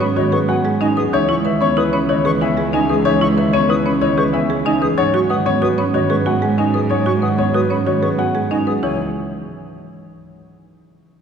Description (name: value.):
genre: classical, minimalist pattern music.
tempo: 187 BPM.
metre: 6/4.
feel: straight.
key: C# minor.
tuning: A4 = 441 Hz.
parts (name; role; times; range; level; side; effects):
dark grand piano; melody; 0.0-9.0 s; G#4 to G#5; -20 LUFS; left 7 dB; none.
marimba with medium hard mallets; accompaniment; 0.0-9.0 s; D#3 to C#4; -21 LUFS; right 2 dB; none.
buzzing marimba with hard mallets; arpeggios; 0.0-9.0 s; C#4 to C#5; -22 LUFS; right 6 dB; none.
silver concert flute; arpeggios; 0.0-9.0 s; D#5 to D#6; -26 LUFS; left 2 dB; none.
warm cello; bass; 0.0-9.0 s; C#2 to G#2; -22 LUFS; right 2 dB; none.
room: wet church reverb, RT60 3.1 s.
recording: recorded in a church or concert hall.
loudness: -14 LUFS.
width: side -7 dB against mid.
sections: 0.0-8.8 A section; 8.8-10.8 B section.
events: none.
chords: 0.0 G#m7; 1.1 C#m7; 5.0 G#m7; 8.8 C#m.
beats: 0.17 0.49 0.81 | 1.13 1.45 1.77 2.09 2.41 2.73 | 3.05 3.37 3.69 4.01 4.34 4.66 | 4.98 5.30 5.62 5.94 6.26 6.58 | 6.90 7.22 7.54 7.87 8.19 8.51 | 8.83.